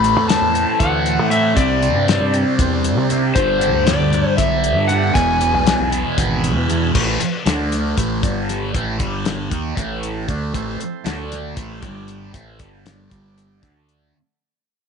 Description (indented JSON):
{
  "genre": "psychedelic rock",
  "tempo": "234 BPM (eighths)",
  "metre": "7/8",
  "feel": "straight",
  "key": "A minor",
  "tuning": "A4 = 441 Hz",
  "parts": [
    { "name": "overdriven slide guitar", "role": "melody", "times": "0.0-6.6 s", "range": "C5 to B5", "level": "-19 LUFS", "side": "left 3 dB", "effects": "tape echo" },
    { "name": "tonewheel organ", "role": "sustained chords", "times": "0.0-6.9, 10.5-14.1 s", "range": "G3 to B5", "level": "-31 LUFS", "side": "right 12 dB", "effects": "slow rotary speaker, overdrive" },
    { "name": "thick fuzz guitar", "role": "riff", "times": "0.0-14.1 s", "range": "E2 to D#4", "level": "-20 LUFS", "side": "right 1 dB", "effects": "distortion, phaser" },
    { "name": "growling fingered electric bass", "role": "bass", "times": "0.0-14.1 s", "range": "E1 to C3", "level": "-23 LUFS", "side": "right 1 dB", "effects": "overdrive" },
    { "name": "cloth-damped thuddy drum kit", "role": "drums", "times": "0.0-14.0 s", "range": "crash cymbal, hi-hat, kick drum, snare drum", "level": "-21 LUFS", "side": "left 3 dB", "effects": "none" }
  ],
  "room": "light reverb, small room ambience",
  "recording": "1960s-style stereo, nothing above 10.6 kHz",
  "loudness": "-16 LUFS",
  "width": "side -6 dB against mid",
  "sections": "0.0-6.9 A section; 6.9-14.1 B section",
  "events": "fade-out 6.9-14.1",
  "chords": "0.0 Am; 1.6 Cadd9; 3.4 Gadd9; 5.2 E; 6.9 A5; 7.5 D5; 8.0 A5; 8.2 G5; 8.7 A5; 9.0 G5; 9.5 Am; 11.1 D5; 11.6 Am; 11.8 G5; 12.3 Am; 12.6 G5; 13.6 D5"
}